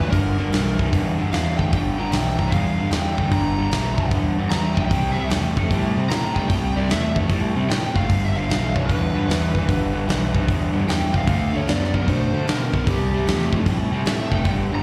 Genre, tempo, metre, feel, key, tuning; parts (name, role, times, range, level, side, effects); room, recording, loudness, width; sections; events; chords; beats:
blues rock power trio and southern rock; 151 BPM; 4/4; swing 66% on 8ths; G mixolydian; A4 = 440 Hz
lead guitar through a small cranked amp; melody; 0.0-14.8 s; G4 to A#5; -31 LUFS; equal; overdrive, slapback echo
raw garage guitar; riff; 0.0-14.8 s; G2 to B3; -26 LUFS; equal; overdrive, slapback echo
fuzz picked electric bass; bass; 0.0-14.8 s; F1 to D3; -26 LUFS; equal; overdrive
big rock drum kit; drums; 0.1-14.6 s; hi-hat, kick drum, snare drum; -26 LUFS; equal
little or no reverb; live gig heard through the venue's PA, recital hall reverb; -21 LUFS; mono
0.0-14.8 A section
0.0 G(#9); 4.9 C; 8.1 G7; 11.3 D7; 12.9 C
| 0.13 0.53 0.93 1.33 | 1.73 2.13 2.53 2.92 | 3.32 3.72 4.12 4.52 | 4.92 5.32 5.71 6.11 | 6.51 6.91 7.30 7.70 | 8.10 8.49 8.89 9.29 | 9.69 10.08 10.48 10.88 | 11.28 11.67 12.07 12.47 | 12.87 13.26 13.66 14.06 | 14.45